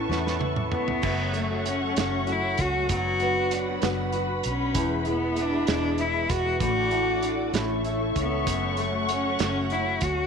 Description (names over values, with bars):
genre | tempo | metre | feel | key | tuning
six-eight pop ballad | 65 BPM (dotted quarters) | 6/8 | straight | unclear | A4 = 440 Hz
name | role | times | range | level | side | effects
warm cello | melody | 0.0-10.3 s | A3 to F#4 | -28 LUFS | left 1 dB | none
flamenco guitar | accompaniment | 0.0-10.3 s | E2 to F#4 | -30 LUFS | equal | double-tracked left and right
muted studio string section | sustained chords | 0.0-10.3 s | F#4 to D6 | -32 LUFS | equal | none
fingerpicked plugged-in steel-string acoustic guitar | arpeggios | 0.0-10.3 s | E2 to F#4 | -35 LUFS | left 13 dB | slapback echo
vintage muted fingered electric bass | bass | 0.0-10.3 s | E1 to E2 | -32 LUFS | equal | none
loose indie drum kit | drums | 0.1-10.2 s | crash cymbal, hi-hat, kick drum, snare drum, toms | -30 LUFS | right 5 dB | none
room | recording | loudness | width
light reverb, small room ambience | 1960s-style stereo | -23 LUFS | side -6 dB against mid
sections
0.0-1.0 A section; 1.0-10.3 B section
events
drum fill 0.1-1.0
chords
0.0 Aadd9; 1.0 F#m; 2.9 Bm/F#; 4.8 E; 6.6 D/A; 7.5 A; 8.5 F#m